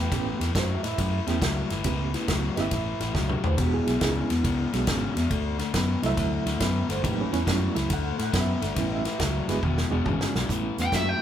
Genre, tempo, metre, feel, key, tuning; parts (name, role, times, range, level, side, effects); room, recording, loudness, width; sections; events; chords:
electric blues shuffle; 139 BPM; 4/4; swing 67% on 8ths; A mixolydian; A4 = 440 Hz
reed electric piano; accompaniment; 0.0-11.2 s; F#3 to G5; -31 LUFS; right 5 dB; overdrive, fast tremolo
overdriven electric guitar; riff; 0.0-11.2 s; E2 to B3; -29 LUFS; left 5 dB
fingered electric bass; bass; 0.0-11.1 s; E1 to A2; -29 LUFS; equal
natural country drum kit; drums; 0.1-11.1 s; hi-hat, kick drum, ride cymbal, snare drum, toms; -29 LUFS; equal
biting lead guitar; melody; 10.8-11.2 s; E5 to G5; -25 LUFS; left 1 dB; overdrive
moderate large studio reverb, RT60 1.3 s; band playing live in one room; -23 LUFS; side -10 dB against mid
0.0-10.5 A section
drum fill 3.1-3.6, 9.6-10.5
0.0 A7; 3.6 E7; 5.3 D7; 7.0 A7; 7.9 D; 8.8 A7; 9.6 E7; 10.5 A7